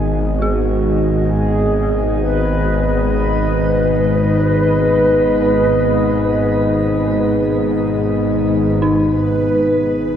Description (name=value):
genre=dark ambient drone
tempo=64 BPM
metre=4/4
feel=straight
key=G# minor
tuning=A4 = 440 Hz
part: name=mellow horn-like synth lead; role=melody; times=0.0-7.8 s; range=F#4 to B4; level=-20 LUFS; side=equal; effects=wide subtle chorus, shimmer reverb, analog delay
part: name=dark analog pad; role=sustained chords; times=0.0-10.2 s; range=B3 to D#5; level=-19 LUFS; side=left 1 dB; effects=lush chorus, shimmer reverb
part: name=dark detuned synth bell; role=arpeggios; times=0.0-10.2 s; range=D#4 to G#4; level=-24 LUFS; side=right 1 dB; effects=chorus, shimmer reverb, analog delay
part: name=bowed-like drone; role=drone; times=0.0-10.2 s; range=G#1 to G#2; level=-17 LUFS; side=equal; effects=built-in reverb
part: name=bubbling stepped-filter texture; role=texture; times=9.1-10.2 s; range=B4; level=-19 LUFS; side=right 1 dB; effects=chorus, built-in reverb, shimmer reverb
room=wet plate reverb, RT60 3.5 s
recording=dreamy mix soaked in reverb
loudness=-13 LUFS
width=side -9 dB against mid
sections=0.0-8.8 A section; 8.8-10.2 A section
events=fade-in on soft synth lead 0.0-8.8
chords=0.0 G#m